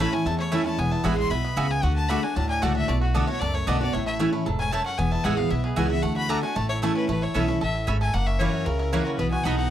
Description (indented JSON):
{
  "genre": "bluegrass",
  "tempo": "228 BPM",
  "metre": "4/4",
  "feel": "straight",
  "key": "A major",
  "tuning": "A4 = 440 Hz",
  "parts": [
    { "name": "bluegrass banjo", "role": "melody", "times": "0.0-9.7 s", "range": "F#3 to A4", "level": "-33 LUFS", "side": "right 2 dB", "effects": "none" },
    { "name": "clear fiddle", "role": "melody", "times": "0.0-9.7 s", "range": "F#4 to C6", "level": "-29 LUFS", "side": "left 2 dB", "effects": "none" },
    { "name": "picked steel-string acoustic guitar", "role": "accompaniment", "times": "0.0-9.7 s", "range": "E2 to F#4", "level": "-26 LUFS", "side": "equal", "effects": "none" },
    { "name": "mandolin", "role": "stabs", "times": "0.0-9.5 s", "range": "A3 to B5", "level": "-29 LUFS", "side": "right 5 dB", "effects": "none" },
    { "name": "upright bass", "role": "bass", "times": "0.0-9.7 s", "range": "E1 to E2", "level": "-27 LUFS", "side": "equal", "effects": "none" }
  ],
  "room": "little or no reverb",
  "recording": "dry, close 1970s-style studio recording",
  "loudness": "-22 LUFS",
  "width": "side -11 dB against mid",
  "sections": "0.0-7.1 A section; 7.1-9.7 B section",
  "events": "fiddle solo 0.0-7.1",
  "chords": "0.0 A; 0.8 Eadd9; 1.8 D; 2.9 Bm7; 3.9 A; 5.0 Eadd9; 6.0 D; 6.6 A; 7.1 Aadd9; 8.1 F#7; 9.2 B"
}